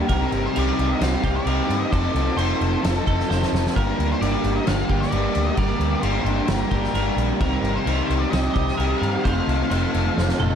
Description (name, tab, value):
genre	rock, shoegaze and dream pop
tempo	131 BPM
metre	4/4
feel	straight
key	G minor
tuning	A4 = 445 Hz
part	twelve-string electric guitar	arpeggios	0.0-10.6 s	G4 to C5	-34 LUFS	right 8 dB	lush chorus, tape echo
part	overdriven electric guitar	riff	0.0-10.6 s	G2 to A4	-25 LUFS	left 7 dB	analog chorus
part	overdriven semi-hollow guitar	riff	0.0-10.6 s	F2 to A4	-26 LUFS	right 10 dB	reverse reverb
part	octave-fuzz lead guitar	melody	0.1-10.6 s	A4 to F5	-30 LUFS	left 2 dB	distortion, tape echo
part	vintage muted fingered electric bass	bass	0.1-10.5 s	F1 to G2	-24 LUFS	equal	none
part	loose indie drum kit	drums	0.1-10.6 s	crash cymbal, kick drum, snare drum, toms	-27 LUFS	equal	none
room	moderate plate reverb, RT60 1.4 s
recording	dreamy mix soaked in reverb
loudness	-19 LUFS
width	side -8 dB against mid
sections	0.0-10.6 A section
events	drum fill 3.3-3.8, 10.2-10.6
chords	0.1 Cm7; 1.9 F7; 3.8 Gm; 7.4 Cm7; 9.2 F7